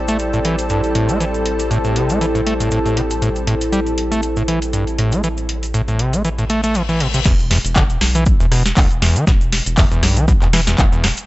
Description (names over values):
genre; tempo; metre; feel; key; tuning
acid house; 119 BPM; 4/4; swing 55% on 16ths; E minor; A4 = 439 Hz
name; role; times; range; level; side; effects
lush unison pad; sustained chords; 0.0-7.2 s; G3 to A4; -26 LUFS; equal; chorus, sidechain pumping
round analog bass; bass; 0.0-11.1 s; E1 to B1; -22 LUFS; equal; tube saturation, sidechain pumping
warbly tape-like pad; texture; 0.0-7.3 s; E4 to G5; -22 LUFS; equal; chorus, built-in reverb, sidechain pumping
overdriven acid bass; riff; 0.1-11.1 s; D2 to A3; -19 LUFS; equal; distortion, tube saturation, vintage 12-bit sampler grit
booming analog drum machine; drums; 0.1-11.3 s; crash cymbal, handclaps, hi-hat, rim click, snare drum; -22 LUFS; equal; none
cabasa; percussion; 0.1-11.3 s; none; -32 LUFS; right 2 dB; none
reverse cymbal; sound effects; 6.6-7.3 s; none; -26 LUFS; left 7 dB; none
electronic kick drum; drums; 7.3-10.9 s; none; -15 LUFS; equal; none
room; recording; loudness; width
digital ambience; dry, gritty hardware recording, nothing above 8.0 kHz; -14 LUFS; side -18 dB against mid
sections
0.0-7.3 A section; 7.3-11.3 B section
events
reverse cymbal 6.6-7.3; drop 7.3-11.3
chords
0.0 Am7; 7.3 E5